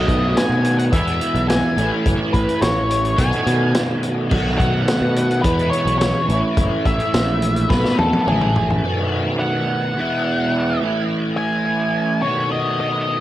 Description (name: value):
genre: psychedelic rock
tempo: 106 BPM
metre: 4/4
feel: straight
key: B mixolydian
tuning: A4 = 440 Hz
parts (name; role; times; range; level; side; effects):
- octave-fuzz lead guitar; melody; 0.0-13.2 s; G#4 to G#5; -23 LUFS; left 2 dB; distortion, analog delay
- soft string machine; sustained chords; 0.0-8.8 s; A3 to F#5; -31 LUFS; right 3 dB; none
- crunchy overdriven guitar; riff; 0.0-13.2 s; E2 to F#4; -20 LUFS; right 1 dB; rotary speaker
- overdriven picked electric bass; bass; 0.0-8.8 s; F#1 to B2; -21 LUFS; equal; none
- vintage drum kit; drums; 0.1-8.8 s; crash cymbal, hi-hat, kick drum, snare drum, toms; -22 LUFS; equal; none
room: light reverb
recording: echo-heavy mix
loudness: -16 LUFS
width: side -14 dB against mid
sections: 0.0-8.8 A section; 8.8-13.2 A section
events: drum fill 7.7-8.8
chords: 0.0 B7; 0.9 E; 1.8 A; 3.2 B7; 5.4 Emaj7; 6.3 A; 7.7 B7; 8.3 Amaj7; 8.8 B7; 10.0 E; 10.8 A; 12.2 B7